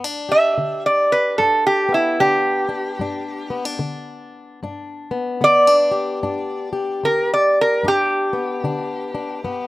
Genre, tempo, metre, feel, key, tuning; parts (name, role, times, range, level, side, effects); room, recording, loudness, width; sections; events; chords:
acoustic country blues, solo or duo; 74 BPM; 4/4; swing 61% on 8ths; G major; A4 = 440 Hz
fingerpicked plugged-in steel-string acoustic guitar; accompaniment; 0.0-9.7 s; G2 to G4; -25 LUFS; left 3 dB
lap resonator guitar; melody; 0.3-9.7 s; E4 to E5; -16 LUFS; right 1 dB
little or no reverb; recorded outdoors, with no room sound; -16 LUFS; side -18 dB against mid
0.0-9.7 A section
resonator guitar played with a steel bar solo 0.0-9.7
0.0 G